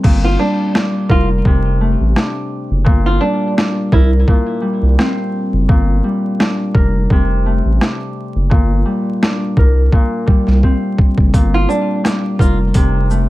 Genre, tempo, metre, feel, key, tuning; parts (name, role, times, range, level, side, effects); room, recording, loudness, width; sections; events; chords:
hip hop, boom-bap hip-hop; 85 BPM; 4/4; swing 54% on 16ths; G minor; A4 = 439 Hz
Celtic harp; accompaniment; 0.0-13.3 s; Bb2 to Bb4; -18 LUFS; left 1 dB; cassette tape, high-pass filter, low-pass filter
saturated sub bass; bass; 0.0-13.3 s; F1 to C2; -14 LUFS; equal
boom bap sampler-style drum kit; drums; 0.0-13.3 s; crash cymbal, hi-hat, kick drum, rim click, shaker, snare drum; -13 LUFS; equal; overdrive
flamenco guitar; melody; 0.2-4.1, 11.5-12.6 s; D4 to F4; -20 LUFS; right 2 dB; high-pass filter, low-pass filter, ping-pong delay
little or no reverb; vinyl crackle; -12 LUFS; side -17 dB against mid
0.0-13.3 A section
break 0.0-11.3; drum fill 10.6-11.3
0.0 Gm7; 1.5 F6; 2.9 Gm; 3.9 C5; 5.7 Gm7; 7.1 F6; 8.5 Gm; 9.6 C5; 11.3 Gm7; 12.7 F6